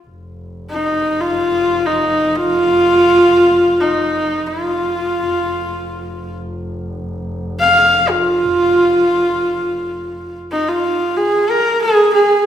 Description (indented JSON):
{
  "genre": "mongolian traditional, Mongolian folk",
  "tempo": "free time",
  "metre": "none",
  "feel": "none",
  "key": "F yu mode",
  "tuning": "A4 = 440 Hz",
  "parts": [
    { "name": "muted double bass", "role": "drone", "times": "0.1-10.6 s", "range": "F1", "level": "-30 LUFS", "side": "equal", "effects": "none" },
    { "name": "rich horsehead fiddle", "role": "melody", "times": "0.7-12.5 s", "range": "Eb4 to F5", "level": "-13 LUFS", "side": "equal", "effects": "none" }
  ],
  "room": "wet recital hall reverb, RT60 1.8 s",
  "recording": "recorded in a church or concert hall",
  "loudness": "-12 LUFS",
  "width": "side -10 dB against mid",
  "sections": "0.1-10.5 A section; 10.5-12.5 B section",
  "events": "none",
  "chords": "none",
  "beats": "free time"
}